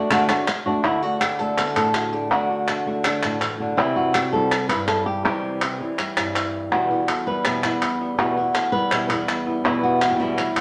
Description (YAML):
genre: flamenco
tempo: 164 BPM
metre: 4/4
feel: straight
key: unclear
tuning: A4 = 439 Hz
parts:
  - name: flamenco guitar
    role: melody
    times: 0.0-10.6 s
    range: E2 to B4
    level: -24 LUFS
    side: equal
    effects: none
  - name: flamenco guitar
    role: stabs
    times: 0.0-10.6 s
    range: E2 to F#4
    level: -30 LUFS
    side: equal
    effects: none
  - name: palmas hand claps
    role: percussion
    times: 0.1-10.6 s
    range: none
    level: -26 LUFS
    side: equal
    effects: none
room: wet studio reverb, RT60 0.8 s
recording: none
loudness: -22 LUFS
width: mono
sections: 0.8-10.6 A section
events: none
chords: 0.0 D; 3.8 C; 6.7 Em